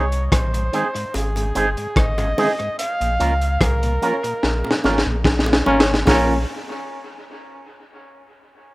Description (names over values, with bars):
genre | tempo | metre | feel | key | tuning
roots reggae | 73 BPM | 4/4 | straight | Bb minor | A4 = 440 Hz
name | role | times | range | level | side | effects
breathy flugelhorn | melody | 0.0-5.3 s | Ab4 to F5 | -25 LUFS | right 1 dB | dub echo
electric guitar with an envelope filter | accompaniment | 0.0-6.3 s | C4 to Bb4 | -25 LUFS | right 3 dB | dub echo
mellow tonewheel organ | accompaniment | 0.0-6.4 s | Ab2 to Db4 | -30 LUFS | left 2 dB | chorus vibrato, slow rotary speaker
warm sub bass | bass | 0.0-6.5 s | G1 to Db2 | -22 LUFS | equal | none
crunchy breakbeat drum kit | drums | 0.1-6.3 s | hi-hat, kick drum, rim click, snare drum | -20 LUFS | equal | dub echo
bongos | percussion | 0.7-6.5 s | none | -28 LUFS | right 1 dB | none
clear trombone | second line | 4.0-6.4 s | Db4 | -24 LUFS | left 2 dB | dub echo
room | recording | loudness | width
small room ambience | rough home demo mix | -17 LUFS | side -20 dB against mid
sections
0.0-6.1 A section; 6.1-8.7 B section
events
band accent 2.8-6.1; drum fill 4.4-6.1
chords
0.0 Ab; 2.8 Bbm